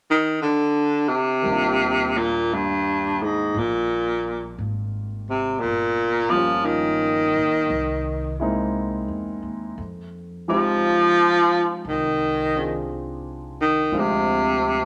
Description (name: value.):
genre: jazz ballad.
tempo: 58 BPM.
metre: 4/4.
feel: swing 67% on 8ths.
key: Eb major.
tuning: A4 = 440 Hz.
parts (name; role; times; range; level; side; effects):
warm baritone saxophone; melody; 0.1-14.8 s; G2 to F3; -22 LUFS; equal; none.
warm concert grand piano; accompaniment; 1.4-14.8 s; Eb3 to Ab4; -31 LUFS; equal; none.
upright bass; bass; 1.5-14.8 s; G1 to F2; -36 LUFS; equal; none.
room: moderate large studio reverb, RT60 1.1 s.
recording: none.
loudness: -22 LUFS.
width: mono.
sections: 0.0-1.5 A section; 1.5-14.8 B section.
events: none.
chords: 0.0 N.C.; 1.5 Ebmaj9; 5.6 Gm7b5; 7.7 C7alt; 9.8 Fm9; 13.9 Dm7b5.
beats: 0.43 | 1.47 2.51 3.54 4.58 | 5.62 6.66 7.70 8.74 | 9.78 10.81 11.85 12.88 | 13.92.